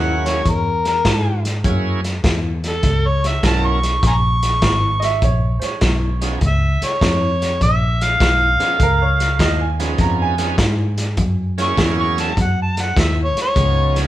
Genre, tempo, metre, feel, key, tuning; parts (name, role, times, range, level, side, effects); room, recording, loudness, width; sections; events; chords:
electric blues shuffle; 101 BPM; 4/4; swing 67% on 8ths; F# mixolydian; A4 = 438 Hz
overdriven harmonica; melody; 0.0-14.0 s; A4 to C#6; -19 LUFS; left 1 dB
bright tonewheel organ; accompaniment; 0.0-14.1 s; E#3 to A#4; -24 LUFS; right 4 dB; slow rotary speaker, overdrive
vintage muted fingered electric bass; bass; 0.0-14.1 s; G#1 to G#2; -19 LUFS; equal
crunchy breakbeat drum kit; drums; 0.3-14.1 s; hi-hat, kick drum, snare drum; -20 LUFS; equal
clear upright piano; second line; 5.0-11.5 s; A4 to A#5; -24 LUFS; right 7 dB
moderate large studio reverb, RT60 1.1 s; band playing live in one room; -15 LUFS; side -14 dB against mid
0.0-14.1 A section
0.0 F#7; 6.4 C#7; 11.2 F#7; 13.6 C#7